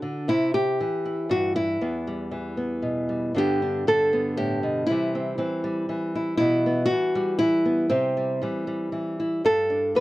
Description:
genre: folk, solo fingerstyle acoustic guitar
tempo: 118 BPM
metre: 3/4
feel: straight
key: unclear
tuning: A4 = 440 Hz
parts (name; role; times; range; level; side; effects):
- nylon-string guitar; solo; 0.0-10.0 s; E2 to B4; -22 LUFS; equal; none
room: light reverb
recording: dry, close 1970s-style studio recording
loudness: -22 LUFS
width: side -17 dB against mid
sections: 0.0-3.3 A section; 3.3-10.0 B section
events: none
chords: 0.3 C; 1.8 Em; 3.3 G; 4.9 C; 6.4 Em/B; 7.9 C; 9.4 G5

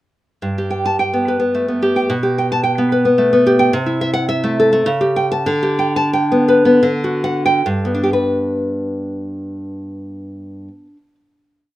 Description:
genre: romantic piece for solo classical guitar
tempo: 71-112 BPM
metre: 3/4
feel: rubato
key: G major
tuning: A4 = 439 Hz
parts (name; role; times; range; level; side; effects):
- nylon-string guitar; solo; 0.4-11.1 s; G2 to A5; -14 LUFS; equal; none
room: moderate studio reverb, RT60 0.6 s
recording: rough home demo mix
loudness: -14 LUFS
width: side -15 dB against mid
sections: 0.4-7.6 A section; 7.6-11.8 final chord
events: slowing down 2.9-7.6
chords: 0.4 G; 2.1 G/B; 3.7 Am/C; 4.9 A7/C#; 5.5 G/D; 6.8 D; 7.6 G

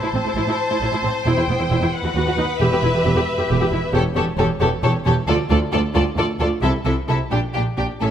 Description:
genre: quick classical-period movement for string orchestra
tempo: 89 BPM (dotted quarters)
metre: 6/8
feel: rubato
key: D minor from 3.9 s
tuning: A4 = 440 Hz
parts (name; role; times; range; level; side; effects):
- rich studio violin section; melody; 0.0-8.1 s; C#5 to A5; -27 LUFS; left 4 dB; none
- rich studio violin section; second line; 0.0-8.1 s; G4 to C5; -24 LUFS; left 2 dB; none
- rich studio viola section; accompaniment; 0.0-8.1 s; B3 to G4; -24 LUFS; equal; none
- rich studio cello section; bass; 0.0-8.1 s; D2 to C3; -24 LUFS; right 2 dB; none
- rich studio double bass section; bass; 0.1-8.1 s; E1 to D#2; -23 LUFS; right 2 dB; none
room: moderate scoring stage reverb, RT60 1.7 s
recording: none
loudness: -17 LUFS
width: side -9 dB against mid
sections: 0.0-8.1 A section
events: none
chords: 0.0 Am; 1.3 Em; 1.9 B; 2.6 Em; 5.3 Dm; 6.6 Am; 7.3 Gm/Bb

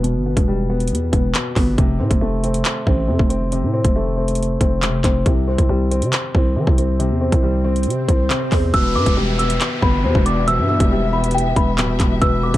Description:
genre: hip hop, drill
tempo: 138 BPM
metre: 4/4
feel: half-time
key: E phrygian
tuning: A4 = 440 Hz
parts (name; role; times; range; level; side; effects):
- dark baby grand piano; accompaniment; 0.0-12.6 s; B2 to C4; -22 LUFS; left 1 dB; tape echo
- growling 808-style bass; bass; 0.0-12.6 s; D1 to E3; -20 LUFS; equal; none
- drill drum kit; drums; 0.0-12.6 s; handclaps, hi-hat, kick drum; -18 LUFS; equal; none
- swell and downlifter; sound effects; 6.8-12.2 s; none; -30 LUFS; equal; none
- small celesta; melody; 8.7-12.6 s; G5 to E6; -22 LUFS; equal; tape echo
- soft octave-layered synth lead; second line; 8.7-12.6 s; B4 to E5; -26 LUFS; left 5 dB; chorus, tape echo
- dark symphonic string section; sustained chords; 8.7-12.6 s; E3 to E5; -29 LUFS; left 2 dB; none
room: digital ambience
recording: echo-heavy mix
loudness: -15 LUFS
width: side -15 dB against mid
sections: 0.0-8.7 A section; 8.7-12.6 B section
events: swell 6.8-8.7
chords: 0.0 Em; 1.8 F; 5.3 C; 8.7 Em

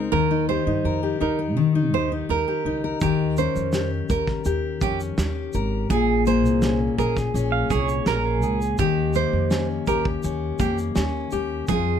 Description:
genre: acoustic pop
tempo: 83 BPM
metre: 4/4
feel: straight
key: unclear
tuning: A4 = 440 Hz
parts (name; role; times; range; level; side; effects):
- fingerpicked steel-string acoustic guitar; accompaniment; 0.0-12.0 s; F2 to Bb4; -23 LUFS; left 6 dB; none
- upright bass; bass; 0.0-12.0 s; Ab1 to Eb3; -27 LUFS; right 1 dB; none
- nylon-string guitar; arpeggios; 0.1-12.0 s; G4 to C5; -25 LUFS; right 9 dB; none
- loose indie drum kit; drums; 3.0-11.9 s; kick drum, shaker, snare drum; -27 LUFS; right 1 dB; none
- pedal steel guitar; second line; 7.5-8.8 s; Ab4 to F5; -27 LUFS; right 7 dB; none
room: light reverb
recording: close, detailed microphones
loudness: -20 LUFS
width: side -8 dB against mid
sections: 0.0-3.0 A section; 3.0-12.0 B section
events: none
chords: 0.1 Eb; 3.0 Eb7; 5.9 Bbm7; 8.8 Eb7

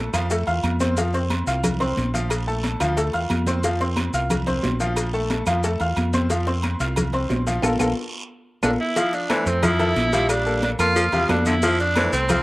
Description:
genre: latin, salsa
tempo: 180 BPM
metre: 4/4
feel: straight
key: F major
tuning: A4 = 441 Hz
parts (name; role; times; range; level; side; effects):
- bright upright piano; accompaniment; 0.0-12.4 s; F3 to F6; -24 LUFS; left 1 dB; cassette tape
- fingered electric bass; bass; 0.0-12.4 s; Bb1 to F2; -25 LUFS; equal; none
- agogo bells and timbales; percussion; 0.1-12.4 s; none; -33 LUFS; right 4 dB; none
- claves; percussion; 0.1-12.4 s; none; -35 LUFS; left 2 dB; none
- cowbell; percussion; 0.1-12.4 s; none; -31 LUFS; left 2 dB; none
- guiro; percussion; 0.1-12.4 s; none; -36 LUFS; right 3 dB; none
- maracas; percussion; 0.1-12.4 s; none; -36 LUFS; left 2 dB; none
- congas; percussion; 0.3-12.4 s; none; -27 LUFS; left 1 dB; none
- bright tenor saxophone; melody; 8.6-12.4 s; C4 to F4; -22 LUFS; right 1 dB; cassette tape
- growling baritone saxophone; second line; 9.0-12.4 s; C3 to G3; -25 LUFS; left 1 dB; cassette tape
room: moderate spring reverb, RT60 1.2 s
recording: home recording on cassette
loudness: -19 LUFS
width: side -20 dB against mid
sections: 0.0-9.0 A section; 9.0-12.4 B section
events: band accent 7.6-9.0; drum fill 8.1-9.0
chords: 0.0 N.C.; 1.0 F5; 2.3 Bbmaj7; 3.6 F5; 5.0 Bb5; 6.3 F5; 7.6 Bb5; 9.0 Fmaj7; 10.3 Bbmaj7; 11.6 Fmaj7

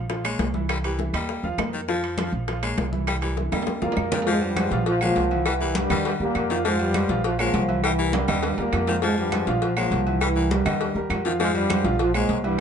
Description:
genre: latin, salsa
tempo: 202 BPM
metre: 4/4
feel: straight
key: F minor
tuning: A4 = 440 Hz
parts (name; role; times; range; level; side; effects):
- warm upright piano; accompaniment; 0.0-12.6 s; Eb3 to F5; -29 LUFS; right 1 dB; none
- upright bass; bass; 0.0-12.6 s; Bb1 to F2; -28 LUFS; right 1 dB; none
- bongos and cowbell; percussion; 0.1-12.4 s; none; -32 LUFS; left 6 dB; none
- congas; percussion; 0.1-12.6 s; none; -33 LUFS; equal; none
- timbales and agogo bells; percussion; 0.1-12.6 s; none; -32 LUFS; equal; none
- growling baritone saxophone; second line; 0.2-12.4 s; Eb3 to Ab3; -29 LUFS; left 5 dB; none
- claves; percussion; 0.2-12.3 s; none; -33 LUFS; right 8 dB; none
- clear trombone section; melody; 3.8-12.6 s; G2 to F4; -25 LUFS; equal; none
room: moderate small room reverb, RT60 0.5 s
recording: nothing above 10.8 kHz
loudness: -21 LUFS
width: side -7 dB against mid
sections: 0.0-4.3 A section; 4.3-12.6 B section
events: drum fill 3.5-4.3, 8.1-9.0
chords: 0.1 Bbm; 0.7 C7; 1.3 Ebadd9; 1.9 Bb5; 2.5 Bbm; 3.1 C7; 3.7 Ebadd9; 4.3 Fm; 4.9 Bbm; 5.5 C7; 6.1 Ebadd9; 6.6 Fm; 7.2 Bbm; 7.8 C7; 8.4 Ebadd9; 9.0 Fm; 9.6 Bbm; 10.2 C7; 10.8 Ebadd9; 11.4 Fm; 12.0 Bbm

